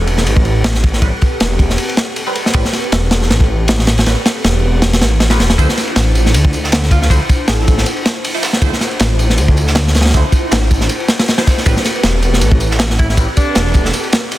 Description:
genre	drum and bass, jungle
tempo	158 BPM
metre	4/4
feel	swing 54% on 16ths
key	D dorian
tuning	A4 = 435 Hz
part	airy breathy pad	sustained chords	0.0-14.1 s	C4 to C5	-23 LUFS	equal	chorus, vintage 12-bit sampler grit
part	detuned saw bass	bass	0.0-13.9 s	E1 to D2	-14 LUFS	equal	none
part	crunchy breakbeat drum kit	drums	0.1-14.4 s	kick drum, ride cymbal, snare drum	-13 LUFS	equal	none
part	band-passed chord stab	stabs	1.0-13.3 s	F3 to C5	-25 LUFS	right 1 dB	phaser, dub echo
part	crunchy breakbeat drum kit	drums	5.6-14.4 s	hi-hat, snare drum, tambourine	-24 LUFS	right 3 dB	high-pass filter on hats, high-pass filter on snare, high-pass filter on perc, high-pass filter on room
part	warm alto saxophone	melody	6.9-7.9, 13.0-13.9 s	D4 to A4	-23 LUFS	right 1 dB	dub echo
room	little or no reverb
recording	dense, heavily limited modern master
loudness	-11 LUFS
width	side -15 dB against mid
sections	0.0-14.4 A section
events	none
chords	0.0 Am9; 5.6 Dm9; 11.7 Am9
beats	0.27 0.65 | 1.03 1.41 1.78 2.17 | 2.54 2.92 3.30 3.68 | 4.06 4.44 4.82 5.20 | 5.58 5.96 6.34 6.72 | 7.10 7.48 7.86 8.24 | 8.62 9.00 9.38 9.76 | 10.14 10.52 10.90 11.28 | 11.66 12.04 12.42 12.80 | 13.18 13.56 13.94 14.32

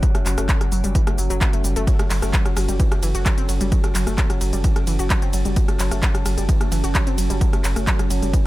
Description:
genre	driving peak-time techno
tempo	130 BPM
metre	4/4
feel	straight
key	F# minor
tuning	A4 = 440 Hz
part	warbly dusty pluck	riff	0.0-8.4 s	E3 to F#4	-28 LUFS	equal	chorus, tube saturation, sidechain pumping, digital delay
part	saturated sub bass	bass	0.0-8.3 s	F#1	-24 LUFS	equal	tube saturation, sidechain pumping, low-pass filter
part	metallic inharmonic drone	drone	0.0-8.5 s	F#3 to F#4	-33 LUFS	left 1 dB	chorus, built-in reverb, sidechain pumping
part	electronic kick drum	drums	0.0-8.4 s	none	-19 LUFS	equal	none
part	techno drum kit	drums	0.0-8.4 s	handclaps, hi-hat, ride cymbal, rim click, shaker	-26 LUFS	equal	sidechain pumping on hats, sidechain pumping on cymbals, sidechain pumping on perc
part	deep dark ambient pad	texture	0.0-8.5 s	C#4 to A5	-30 LUFS	right 2 dB	chorus, built-in reverb, sidechain pumping
room	little or no reverb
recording	none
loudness	-17 LUFS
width	side -17 dB against mid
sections	0.0-8.5 A section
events	none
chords	0.0 F#m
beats	| 0.03 0.49 0.95 1.41 | 1.87 2.33 2.80 3.26 | 3.72 4.18 4.64 5.10 | 5.57 6.03 6.49 6.95 | 7.41 7.87 8.34

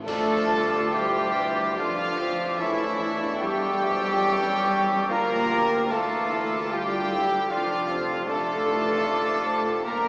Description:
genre	classical, slow romantic movement for symphony orchestra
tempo	68-78 BPM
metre	3/4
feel	rubato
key	D minor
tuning	A4 = 440 Hz
part	warm studio violin section	melody	0.0-10.1 s	E5 to Bb5	-34 LUFS	equal	none
part	timpani	percussion	0.0-1.3 s	D3	-46 LUFS	equal	none
part	clear oboe	second line	0.1-10.1 s	F4 to A4	-36 LUFS	equal	none
part	mellow hollow concert flute	second line	0.1-10.1 s	C#6 to D6	-34 LUFS	equal	none
part	warm clarinet	second line	0.1-10.1 s	E4 to Bb4	-36 LUFS	equal	none
part	warm studio violin section	second line	0.1-10.1 s	E4 to Bb4	-34 LUFS	equal	none
part	warm bassoon	accompaniment	0.1-10.1 s	Bb3 to G4	-34 LUFS	equal	none
part	warm studio viola section	accompaniment	0.1-10.1 s	D3 to F4	-35 LUFS	equal	none
part	mellow French horn section	sustained chords	0.1-10.1 s	E3 to Bb3	-34 LUFS	equal	none
part	clear trumpet section	stabs	0.1-10.1 s	E4 to Bb4	-33 LUFS	equal	none
part	dark studio cello section	bass	0.1-10.1 s	E3 to Bb3	-38 LUFS	equal	none
part	dark studio double bass section	bass	0.1-10.1 s	F1 to F2	-47 LUFS	equal	none
part	warm tuba	bass	0.1-10.1 s	E1 to D2	-41 LUFS	equal	none
part	clash cymbals and concert bass drum	percussion	0.1-1.7 s	none	-44 LUFS	equal	none
room	wet church reverb, RT60 3.1 s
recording	recorded in a church or concert hall, small speaker sound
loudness	-25 LUFS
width	mono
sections	0.1-10.1 A section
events	band accent 0.1-0.9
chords	0.1 Dm; 2.6 A7/E; 5.1 Dm; 7.5 Dm/F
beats	| 0.06 0.93 1.78 | 2.60 3.42 4.26 | 5.10 5.91 6.71 | 7.50 8.28 9.05 | 9.85

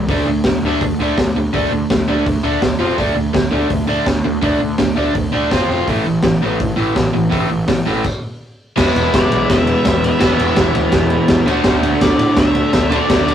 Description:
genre	garage rock duo or trio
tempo	166 BPM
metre	4/4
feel	straight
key	unclear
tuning	A4 = 440 Hz
part	overdriven electric guitar	riff	0.0-13.3 s	A2 to F#4	-16 LUFS	equal	none
part	fuzz picked electric bass	bass	0.0-13.3 s	E1 to A2	-22 LUFS	equal	overdrive
part	crunchy breakbeat drum kit	drums	0.1-13.3 s	crash cymbal, hi-hat, kick drum, ride cymbal, snare drum	-17 LUFS	equal	none
part	octave-fuzz lead guitar	melody	9.1-13.3 s	D5 to E5	-22 LUFS	left 2 dB	distortion
room	moderate studio reverb, RT60 0.6 s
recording	rough rehearsal-room recording, tube saturation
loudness	-13 LUFS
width	side -9 dB against mid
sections	0.0-8.8 A section; 8.8-13.3 B section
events	stop 8.0-8.8; lead electric guitar solo 8.8-13.3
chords	0.1 D5; 2.8 F5; 3.0 D5; 5.5 F5; 5.9 A5; 8.8 E; 11.5 D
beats	| 0.09 0.45 0.81 1.18 | 1.54 1.90 2.26 2.62 | 2.98 3.34 3.70 4.06 | 4.43 4.79 5.15 5.51 | 5.87 6.24 6.60 6.96 | 7.32 7.68 8.04 8.41 | 8.77 9.13 9.49 9.85 | 10.21 10.57 10.93 11.29 | 11.65 12.01 12.37 12.73 | 13.09

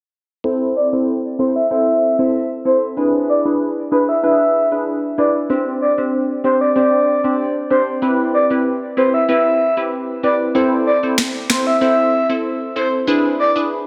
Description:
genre	dancehall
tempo	95 BPM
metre	4/4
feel	straight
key	A minor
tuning	A4 = 440 Hz
part	glassy wavetable pluck	accompaniment	0.4-13.7 s	C4 to C5	-20 LUFS	equal	chorus, low-pass filter
part	breathy flute-like synth lead	melody	0.8-13.5 s	B4 to E5	-20 LUFS	equal	chorus, low-pass filter, tape echo
part	electronic finger snaps and snare drum	drums	11.2-11.7 s	none	-22 LUFS	equal	none
room	light reverb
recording	none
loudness	-17 LUFS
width	mono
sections	0.4-13.9 A section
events	filter sweep 0.4-13.9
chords	0.4 Am; 3.0 E7; 5.5 Gsus4; 8.0 Cmaj7; 10.6 Am; 13.1 E7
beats	| 0.44 1.08 1.71 2.34 | 2.97 3.60 4.23 4.87 | 5.50 6.13 6.76 7.39 | 8.02 8.65 9.29 9.92 | 10.55 11.18 11.81 12.44 | 13.08 13.71

